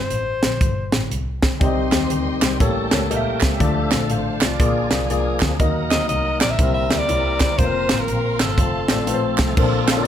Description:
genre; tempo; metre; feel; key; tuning
uptempo gospel; 120 BPM; 4/4; swing 63% on 8ths; unclear; A4 = 440 Hz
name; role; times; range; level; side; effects
bright alto saxophone; melody; 0.0-0.9, 5.9-9.4 s; A4 to E5; -24 LUFS; equal; none
warm double bass; bass; 0.0-10.0 s; F1 to Eb2; -24 LUFS; equal; none
crisp fusion drum kit; drums; 0.1-10.0 s; crash cymbal, hi-hat, kick drum, snare drum; -20 LUFS; equal; none
dark upright piano; accompaniment; 1.6-10.1 s; A2 to F5; -23 LUFS; left 4 dB; none
tonewheel organ; sustained chords; 1.6-10.1 s; Eb3 to G5; -28 LUFS; right 2 dB; slow rotary speaker, chorus vibrato
warm studio string section; sustained chords; 1.6-9.6 s; Bb3 to C6; -31 LUFS; left 1 dB; none
group handclap; percussion; 1.9-10.0 s; none; -29 LUFS; right 6 dB; none
room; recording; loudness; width
light reverb; none; -17 LUFS; side -10 dB against mid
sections
0.0-9.6 A section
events
none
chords
0.0 F (rootless); 1.6 Cm; 2.6 A7b9; 3.6 Dm; 4.6 Bb7; 5.6 Ebm; 6.6 C7; 7.6 Fsus4; 8.6 F; 9.6 Bbmaj9

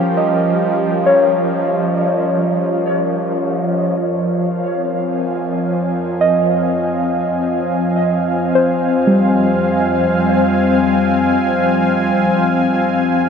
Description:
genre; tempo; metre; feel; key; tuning
ambient; free time; none; none; F minor; A4 = 440 Hz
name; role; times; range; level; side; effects
warm analog pad; sustained chords; 0.0-13.3 s; F3 to Ab5; -16 LUFS; equal; chorus, tremolo
muted felt-like synth keys; arpeggios; 0.0-13.3 s; G3 to F5; -17 LUFS; equal; chorus, diffuse ambient delay
clear chamber cello section; bass; 4.0-13.3 s; F2; -33 LUFS; equal; none
room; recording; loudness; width
wet huge ambient reverb, RT60 8.5 s; in a vast, echoing space; -14 LUFS; side -6 dB against mid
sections
0.0-4.0 A section; 4.0-13.3 B section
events
fade-in on cello section 4.0-13.3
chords
0.0 Eb7/F; 4.0 Fm

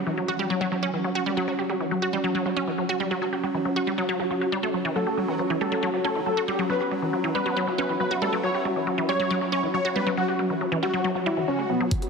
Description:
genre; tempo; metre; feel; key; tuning
psychedelic trance; 138 BPM; 4/4; straight; unclear; A4 = 440 Hz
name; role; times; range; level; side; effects
bubbling stepped-filter texture; sustained chords; 0.0-12.1 s; F#3; -32 LUFS; right 2 dB; chorus, built-in reverb, sidechain pumping
wide unison pluck; riff; 0.0-12.1 s; E3 to G4; -27 LUFS; equal; auto-pan, sidechain pumping, tape echo
downlifter, swell and riser; sound effects; 0.0-1.5, 11.2-12.1 s; none; -37 LUFS; equal; none
deep dark ambient pad; texture; 0.0-12.1 s; C#4 to C#6; -30 LUFS; equal; chorus, built-in reverb, sidechain pumping
wide unison lead; melody; 5.0-11.8 s; B3 to C#5; -27 LUFS; left 1 dB; phaser, sidechain pumping, tape echo
formant-sweep wobble bass; second line; 5.3-8.7 s; B3 to C#4; -39 LUFS; right 4 dB; ensemble chorus, sidechain pumping, high-pass filter, tape echo
electronic hi-hat; drums; 11.9-12.1 s; none; -41 LUFS; right 1 dB; overdrive
electronic kick drum; drums; 11.9-12.0 s; none; -24 LUFS; equal; overdrive
room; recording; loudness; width
moderate lush hall reverb, RT60 1.8 s, digital ambience; heavily compressed radio sound; -23 LUFS; side -4 dB against mid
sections
0.0-11.9 A section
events
swell 11.2-11.9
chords
0.0 F#5

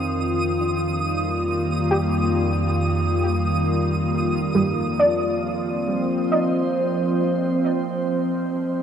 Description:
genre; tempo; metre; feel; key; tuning
ambient; 68 BPM; 3/4; straight; unclear; A4 = 440 Hz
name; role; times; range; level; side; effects
glassy FM pad; sustained chords; 0.0-8.8 s; F2 to C5; -21 LUFS; equal; ensemble chorus, built-in reverb
soft round pluck; arpeggios; 0.0-8.2 s; G3 to Eb5; -25 LUFS; right 1 dB; ensemble chorus, tape echo
twinkling granular texture; texture; 0.0-4.6 s; Eb6; -30 LUFS; right 2 dB; built-in reverb
room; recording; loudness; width
wet huge ambient reverb, RT60 7.7 s; cassette tape; -20 LUFS; side -8 dB against mid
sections
0.0-4.6 A section; 4.6-8.8 B section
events
none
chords
0.0 Ebadd9/F; 4.6 Fsus2

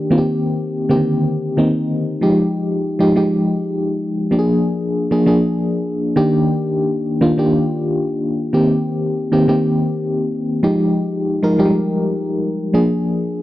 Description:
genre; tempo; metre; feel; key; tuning
R&B; 114 BPM; 4/4; swing 60% on 16ths; F dorian; A4 = 440 Hz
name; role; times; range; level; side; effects
FM electric piano with tremolo; solo; 0.0-13.4 s; D3 to Bb4; -15 LUFS; equal; none
room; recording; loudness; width
digital ambience; dry, close 1970s-style studio recording; -15 LUFS; side -15 dB against mid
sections
0.0-2.2 A section; 2.2-13.4 B section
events
none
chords
0.1 Cm7; 2.2 Fm9; 4.3 Bb7; 6.2 Ebmaj7; 8.5 Cm7; 10.6 Fm9; 12.7 Bb7

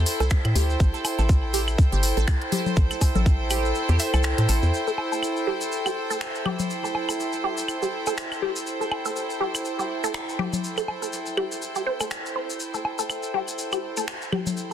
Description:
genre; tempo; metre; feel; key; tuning
minimal techno; 122 BPM; 4/4; swing 57% on 16ths; A minor; A4 = 440 Hz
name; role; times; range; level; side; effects
hollow knocking FM bass; bass; 0.0-4.7 s; G1 to A2; -22 LUFS; equal; sidechain pumping
rich chamber string section; texture; 0.0-14.7 s; E4 to G5; -28 LUFS; right 1 dB; sidechain pumping
minimal click drum kit; drums; 0.1-14.2 s; finger snaps, hi-hat; -32 LUFS; equal; overdrive, soft clipping on snare
maracas; percussion; 0.1-14.7 s; none; -35 LUFS; left 3 dB; none
resonant blip pluck; riff; 0.2-14.7 s; G4 to A5; -30 LUFS; right 1 dB; phaser, sidechain pumping, tape echo
woodblock, claves and congas; percussion; 0.2-14.6 s; none; -29 LUFS; left 3 dB; tape echo
electronic kick drum; drums; 0.3-3.4 s; none; -19 LUFS; equal; none
room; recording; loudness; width
light reverb; dense, heavily limited modern master; -22 LUFS; side -10 dB against mid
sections
0.0-4.7 A section; 4.7-14.7 B section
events
drop 0.0-4.7; kick drops out 3.8-4.7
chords
0.0 Am7

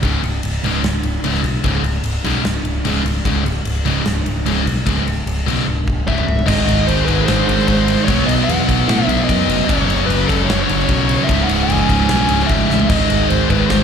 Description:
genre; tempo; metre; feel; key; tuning
hard rock; 149 BPM; 4/4; straight; unclear; A4 = 440 Hz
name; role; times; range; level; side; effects
scooped high-gain guitar; riff; 0.0-13.8 s; C#2 to B3; -20 LUFS; left 14 dB; distortion
sludgy distorted guitar; riff; 0.0-13.8 s; C#2 to B3; -20 LUFS; right 10 dB; overdrive
modern bright picked electric bass; bass; 0.0-13.8 s; C#1 to A2; -20 LUFS; equal; none
huge arena drum kit; drums; 0.0-13.8 s; crash cymbal, kick drum, ride cymbal, snare drum, splash cymbal, toms; -21 LUFS; equal; none
bluesy overdriven lead guitar; melody; 6.1-13.8 s; A4 to G#5; -21 LUFS; left 1 dB; distortion, plate reverb, slapback echo, analog delay
room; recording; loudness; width
light reverb; live gig heard through the venue's PA, recital hall reverb; -14 LUFS; side -7 dB against mid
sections
0.0-6.5 A section; 6.5-13.8 B section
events
drum fill 5.7-6.5, 12.7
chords
0.0 C#5; 6.5 G#; 8.1 B; 9.7 F#5; 11.3 C#m; 12.9 G#

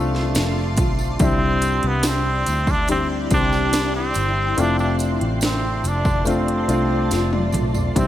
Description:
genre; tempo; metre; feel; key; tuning
pop ballad; 71 BPM; 4/4; straight; unclear; A4 = 440 Hz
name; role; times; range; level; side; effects
trombone with straight mute; melody; 0.0-8.1 s; A3 to D4; -24 LUFS; right 1 dB; none
warm upright piano; accompaniment; 0.0-8.1 s; G2 to G4; -24 LUFS; left 3 dB; none
granular cloud pad; sustained chords; 0.0-8.1 s; E4 to C6; -28 LUFS; equal; built-in reverb, ensemble chorus
vintage muted fingered electric bass; bass; 0.0-8.1 s; F1 to D2; -23 LUFS; equal; none
house drum kit; drums; 0.1-8.1 s; hi-hat, kick drum, snare drum, toms; -23 LUFS; equal; overdrive, gated reverb
tambourine; percussion; 0.3-8.1 s; none; -36 LUFS; right 7 dB; none
room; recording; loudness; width
light reverb, digital ambience; bright 1980s-style digital production; -17 LUFS; side -12 dB against mid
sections
0.0-8.1 A section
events
drum fill 7.1-8.0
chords
0.0 F6; 1.2 Cadd9; 4.6 F6

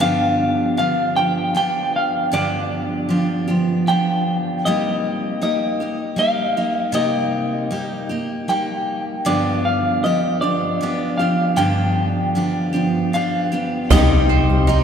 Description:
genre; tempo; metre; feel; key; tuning
acoustic folk duo or small band; 78 BPM; 3/4; straight; C minor; A4 = 441 Hz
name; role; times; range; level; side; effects
semi-hollow electric guitar; melody; 0.0-14.8 s; D5 to G5; -21 LUFS; equal; tremolo
picked steel-string acoustic guitar; accompaniment; 0.0-14.8 s; G2 to G4; -20 LUFS; equal; none
mellow tonewheel organ; sustained chords; 13.9-14.8 s; C3 to G4; -22 LUFS; equal; slow rotary speaker
mandolin; arpeggios; 13.9-14.8 s; G3 to G5; -22 LUFS; right 6 dB; none
mellow fretless electric bass; bass; 13.9-14.8 s; C2; -17 LUFS; equal; none
cajon; percussion; 13.9-14.6 s; none; -18 LUFS; right 2 dB; none
room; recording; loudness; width
wet cathedral reverb, RT60 4.8 s; recorded in a church or concert hall; -17 LUFS; side -7 dB against mid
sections
0.0-13.9 A section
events
none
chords
0.0 G7; 4.6 Cm7; 9.3 G7; 13.9 Cm

